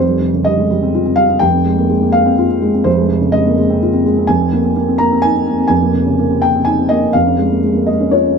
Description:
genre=neoclassical minimalist piano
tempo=125 BPM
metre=3/4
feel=rubato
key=F minor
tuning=A4 = 440 Hz
part: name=felt-muted upright piano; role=solo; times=0.0-8.4 s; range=F1 to Bb5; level=-11 LUFS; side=equal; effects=none
room=light reverb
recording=none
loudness=-11 LUFS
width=side -6 dB against mid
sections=0.0-8.4 A section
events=none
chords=0.0 Csus4/F; 1.4 Fm; 7.1 Db/F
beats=0.45 0.94 | 1.42 1.91 2.39 | 2.86 3.34 3.82 | 4.29 4.77 5.24 | 5.71 6.19 6.67 | 7.14 7.63 8.13

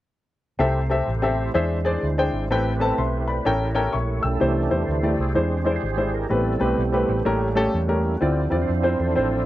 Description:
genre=uptempo gospel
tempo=126 BPM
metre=4/4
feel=swing 63% on 8ths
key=C major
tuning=A4 = 440 Hz
part: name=clear upright piano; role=accompaniment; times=0.6-9.4 s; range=A2 to E6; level=-23 LUFS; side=left 2 dB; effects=none
part: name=mellow French horn section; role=sustained chords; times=0.6-9.5 s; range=C3 to B4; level=-34 LUFS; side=right 1 dB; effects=none
part: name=percussive tonewheel organ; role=sustained chords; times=0.6-9.5 s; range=E3 to D5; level=-27 LUFS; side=right 4 dB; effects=slow rotary speaker, overdrive, chorus vibrato
part: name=hollow-body short-scale fingered electric bass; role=bass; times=0.6-9.5 s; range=G#1 to F2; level=-25 LUFS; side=equal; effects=none
room=little or no reverb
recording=dry, close 1970s-style studio recording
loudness=-20 LUFS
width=side -15 dB against mid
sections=0.6-4.4 A section; 4.4-9.5 B section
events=tonewheel organ solo 4.4-9.5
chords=0.6 C6; 1.6 E7alt; 2.5 Am9; 3.5 A7b9; 4.4 C6; 5.4 E7alt; 6.3 Am9; 7.3 A7b9; 8.2 Dm9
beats=| 0.60 1.08 1.55 2.03 | 2.51 2.98 3.46 3.94 | 4.41 4.89 5.36 5.84 | 6.32 6.79 7.27 7.75 | 8.22 8.70 9.18

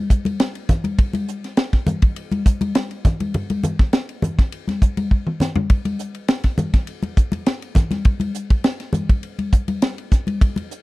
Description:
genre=jazz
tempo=102 BPM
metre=4/4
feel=straight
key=none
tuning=none
part: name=tight funk drum kit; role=drums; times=0.1-10.8 s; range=hi-hat, kick drum, ride cymbal, snare drum, toms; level=-17 LUFS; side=equal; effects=none
part: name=congas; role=percussion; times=0.3-10.7 s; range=none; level=-23 LUFS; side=left 2 dB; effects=none
room=small room reverb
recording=dry, close 1970s-style studio recording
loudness=-18 LUFS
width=side -20 dB against mid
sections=0.0-10.8 A section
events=drum fill 5.1-5.7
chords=none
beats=0.39 | 0.98 1.57 2.16 2.75 | 3.34 3.93 4.52 5.11 | 5.70 6.29 6.87 7.46 | 8.05 8.64 9.23 9.82 | 10.41

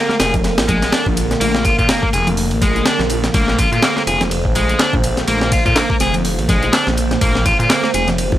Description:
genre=breakbeat, breaks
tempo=124 BPM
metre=4/4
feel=swing 57% on 16ths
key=unclear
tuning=A4 = 435 Hz
part: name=warbly tape-like pad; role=sustained chords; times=0.0-8.4 s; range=D3 to C5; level=-22 LUFS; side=right 2 dB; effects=chorus, built-in reverb, phaser, vintage 12-bit sampler grit, sidechain pumping
part: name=overdriven electric guitar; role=riff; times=0.0-8.1 s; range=Ab3 to Ab4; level=-19 LUFS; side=left 1 dB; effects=tube saturation, tape echo
part: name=breakbeat sampler-style drum kit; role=drums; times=0.1-8.4 s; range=hi-hat, kick drum, ride cymbal, snare drum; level=-18 LUFS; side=equal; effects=studio reverb
part: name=congas and bongos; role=percussion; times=0.1-8.4 s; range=none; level=-26 LUFS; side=left 1 dB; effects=none
part: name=phased detuned saw bass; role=bass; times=0.2-8.4 s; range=F1 to Bb2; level=-20 LUFS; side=equal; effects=phaser
part: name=punchy analog drum machine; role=drums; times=0.2-8.3 s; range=handclaps, hi-hat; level=-26 LUFS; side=left 1 dB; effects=studio reverb
room=digital ambience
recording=dry, gritty hardware recording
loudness=-13 LUFS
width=side -13 dB against mid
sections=0.0-8.4 A section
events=none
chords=0.0 Bb7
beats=0.44 0.93 | 1.41 1.90 2.38 2.86 | 3.35 3.83 4.31 4.80 | 5.28 5.77 6.25 6.73 | 7.22 7.70 8.19

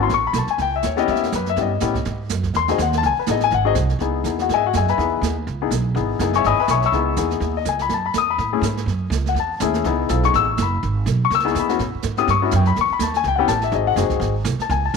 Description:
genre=jazz, small-group swing and bop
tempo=247 BPM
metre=4/4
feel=swing 57% on 8ths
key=C# minor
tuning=A4 = 438 Hz
part: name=warm concert grand piano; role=accompaniment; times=0.0-14.9 s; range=A3 to E6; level=-19 LUFS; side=left 10 dB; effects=none
part: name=upright bass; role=bass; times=0.0-15.0 s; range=F#1 to A2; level=-22 LUFS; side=right 3 dB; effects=none
part: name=jazz brush drum kit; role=drums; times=0.1-15.0 s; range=brushed snare drum, hi-hat, kick drum, snare drum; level=-28 LUFS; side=right 11 dB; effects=none
room=moderate spring reverb, RT60 1.5 s, small room reverb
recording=1960s-style stereo with parts hard left and right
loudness=-17 LUFS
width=side -5 dB against mid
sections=0.0-4.0 A section; 4.0-15.0 A section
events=none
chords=0.1 A7; 2.1 G#7; 3.0 C#m9; 3.5 G#7; 4.0 C#m9; 7.9 F#m7; 9.8 C#m9; 11.8 A7; 13.7 G#7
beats=| 0.10 0.35 0.59 0.83 | 1.08 1.32 1.57 1.81 | 2.06 2.30 2.54 2.79 | 3.03 3.27 3.52 3.76 | 4.00 4.25 4.49 4.74 | 4.98 5.22 5.47 5.71 | 5.96 6.20 6.44 6.69 | 6.93 7.17 7.42 7.66 | 7.90 8.15 8.39 8.63 | 8.88 9.12 9.36 9.61 | 9.85 10.09 10.33 10.58 | 10.82 11.06 11.31 11.55 | 11.79 12.03 12.28 12.52 | 12.76 13.00 13.25 13.49 | 13.73 13.97 14.22 14.46 | 14.70 14.95

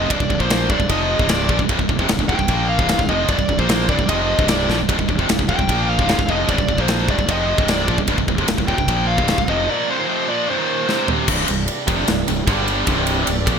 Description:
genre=heavy metal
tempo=150 BPM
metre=4/4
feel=straight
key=C minor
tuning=A4 = 440 Hz
part: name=high-gain lead guitar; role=melody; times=0.0-11.1 s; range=C5 to G5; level=-23 LUFS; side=equal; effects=distortion, digital delay
part: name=heavy high-gain guitar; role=riff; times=0.0-13.6 s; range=C2 to Bb3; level=-23 LUFS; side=left 13 dB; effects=distortion
part: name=tight distorted guitar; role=riff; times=0.0-13.6 s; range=C2 to Bb3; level=-23 LUFS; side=right 13 dB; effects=distortion
part: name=fuzz fingered electric bass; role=bass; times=0.0-13.6 s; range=C1 to Bb1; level=-23 LUFS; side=equal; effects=overdrive
part: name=tight metal drum kit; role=drums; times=0.1-13.6 s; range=crash cymbal, kick drum, ride cymbal, snare drum, toms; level=-21 LUFS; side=equal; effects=gated reverb
part: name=muted studio string section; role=sustained chords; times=11.3-13.6 s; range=C3 to D5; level=-28 LUFS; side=equal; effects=none
room=moderate plate reverb, RT60 1.8 s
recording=bright 1980s-style digital production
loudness=-16 LUFS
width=side -7 dB against mid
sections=0.0-11.3 A section; 11.3-13.6 B section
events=drum fill 4.7, 10.9-11.3; half time 11.3-13.6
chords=0.0 Cm; 11.3 C5; 12.5 G5; 12.9 C5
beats=| 0.11 0.51 0.91 1.30 | 1.70 2.10 2.50 2.90 | 3.30 3.69 4.09 4.49 | 4.89 5.29 5.69 6.09 | 6.49 6.89 7.29 7.69 | 8.09 8.49 8.89 9.29 | 9.69 10.09 10.49 10.89 | 11.29 11.68 12.08 12.48 | 12.88 13.28

